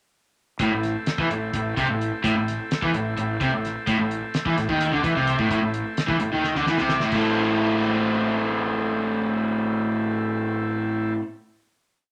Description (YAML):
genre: psychedelic rock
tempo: 258 BPM (eighths)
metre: 7/8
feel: straight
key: A minor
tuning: A4 = 441 Hz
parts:
  - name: combo organ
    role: sustained chords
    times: 0.6-11.1 s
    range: A3 to A4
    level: -34 LUFS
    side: equal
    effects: none
  - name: raw garage guitar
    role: riff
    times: 0.6-11.2 s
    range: A2 to A4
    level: -24 LUFS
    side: equal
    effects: overdrive
  - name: fuzz fingered electric bass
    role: bass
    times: 0.6-11.1 s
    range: A1 to E2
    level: -35 LUFS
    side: equal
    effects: overdrive
  - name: damped 70s drum kit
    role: drums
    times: 0.6-7.9 s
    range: crash cymbal, hi-hat, kick drum, rim click, snare drum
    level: -32 LUFS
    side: equal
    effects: none
room: moderate studio reverb, RT60 0.8 s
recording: none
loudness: -24 LUFS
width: mono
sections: 0.6-7.1 riff; 7.1-10.4 final chord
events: drum fill 6.4-7.1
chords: 0.6 Am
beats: | 0.61 0.84 1.07 1.31 1.54 1.77 2.01 | 2.24 2.48 2.71 2.94 3.17 3.41 3.64 | 3.87 4.11 4.34 4.57 4.80 5.04 5.27 | 5.50 5.73 5.97 6.20 6.43 6.66 6.90 | 7.13 7.36 7.59 7.83 8.06 8.29 8.52 | 8.76 8.99 9.22 9.46 9.69 9.92 10.15